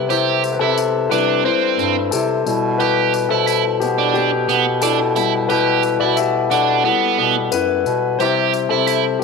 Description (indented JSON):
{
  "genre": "piano-driven pop",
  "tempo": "89 BPM",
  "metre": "4/4",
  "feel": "straight",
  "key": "E minor",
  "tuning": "A4 = 440 Hz",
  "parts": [
    { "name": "dark baby grand piano", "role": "accompaniment", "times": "0.0-9.2 s", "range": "G3 to F#5", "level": "-18 LUFS", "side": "left 9 dB", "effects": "none" },
    { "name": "mellow bass clarinet", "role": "bass", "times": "0.0-9.2 s", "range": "F#2 to C3", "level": "-22 LUFS", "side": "right 3 dB", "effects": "none" },
    { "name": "biting overdriven guitar", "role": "riff", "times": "0.1-9.0 s", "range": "B3 to G4", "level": "-19 LUFS", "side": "right 14 dB", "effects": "spring reverb" },
    { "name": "tambourine", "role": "percussion", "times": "0.1-9.2 s", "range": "none", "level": "-32 LUFS", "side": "left 7 dB", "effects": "none" }
  ],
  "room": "moderate echo chamber reverb, RT60 1.3 s, studio ambience",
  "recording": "1960s-style stereo with parts hard left and right",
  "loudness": "-15 LUFS",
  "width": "side -4 dB against mid",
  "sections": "0.0-9.2 A section",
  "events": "grand piano solo 0.0-9.2",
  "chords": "0.0 C; 2.5 Em/B; 8.2 C"
}